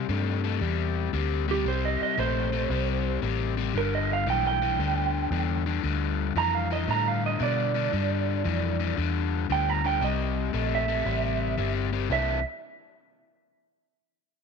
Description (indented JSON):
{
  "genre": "electric blues shuffle",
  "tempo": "115 BPM",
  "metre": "4/4",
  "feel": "swing 66% on 8ths",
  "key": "C mixolydian",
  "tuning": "A4 = 439 Hz",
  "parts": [
    { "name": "overdriven electric guitar", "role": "riff", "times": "0.0-12.4 s", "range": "G2 to D4", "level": "-29 LUFS", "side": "left 14 dB", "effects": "none" },
    { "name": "vintage muted fingered electric bass", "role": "bass", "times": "0.0-12.4 s", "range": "G1 to B2", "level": "-29 LUFS", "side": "equal", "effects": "none" },
    { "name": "electric guitar through a small old amp", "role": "melody", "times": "1.5-12.4 s", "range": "G4 to Bb5", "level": "-28 LUFS", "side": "right 11 dB", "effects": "none" }
  ],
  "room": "light reverb",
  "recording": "1960s-style stereo with parts hard left and right",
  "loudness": "-24 LUFS",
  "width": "side -5 dB against mid",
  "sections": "0.0-12.1 A section; 12.1-14.2 B section",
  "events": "none",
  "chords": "0.0 C7; 3.7 G7; 10.0 C7; 12.1 C9",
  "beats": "0.09 0.61 1.14 | 1.66 2.18 2.70 3.23 | 3.75 4.27 4.79 5.32 | 5.84 6.36 6.88 7.41 | 7.93 8.45 8.97 9.49 | 10.01 10.54 11.06 11.58 | 12.10"
}